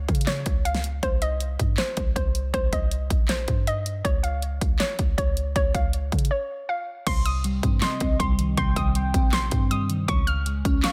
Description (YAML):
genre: hip hop, trap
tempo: 159 BPM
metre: 4/4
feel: half-time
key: C phrygian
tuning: A4 = 440 Hz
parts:
  - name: hollow square pluck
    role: melody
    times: 0.0-10.9 s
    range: C5 to F6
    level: -32 LUFS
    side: equal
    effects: chorus, low-pass filter, tape echo
  - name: warm 808-style bass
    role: bass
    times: 0.0-10.8 s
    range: Bb1 to Db3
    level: -28 LUFS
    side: equal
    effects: none
  - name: big-room dance drum kit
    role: drums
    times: 0.1-10.9 s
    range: crash cymbal, handclaps, hi-hat, kick drum, snare drum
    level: -27 LUFS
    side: equal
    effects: none
  - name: glassy digital keys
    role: accompaniment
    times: 7.1-10.9 s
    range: C3 to Db4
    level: -30 LUFS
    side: equal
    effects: chorus, low-pass filter
  - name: warm velvety synth lead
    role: second line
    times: 7.8-10.9 s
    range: Eb5 to G5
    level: -36 LUFS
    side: equal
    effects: chorus, tape echo
room: digital ambience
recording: none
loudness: -24 LUFS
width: mono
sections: 0.0-7.1 A section; 7.1-10.9 B section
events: break 6.3-7.1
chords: 0.0 Db; 1.0 Cm; 4.0 Db; 7.1 Cm; 10.1 Db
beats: 0.27 0.65 | 1.03 1.41 1.78 2.16 | 2.54 2.92 3.29 3.67 | 4.05 4.42 4.80 5.18 | 5.56 5.93 6.31 6.69 | 7.07 7.44 7.82 8.20 | 8.58 8.95 9.33 9.71 | 10.09 10.46 10.84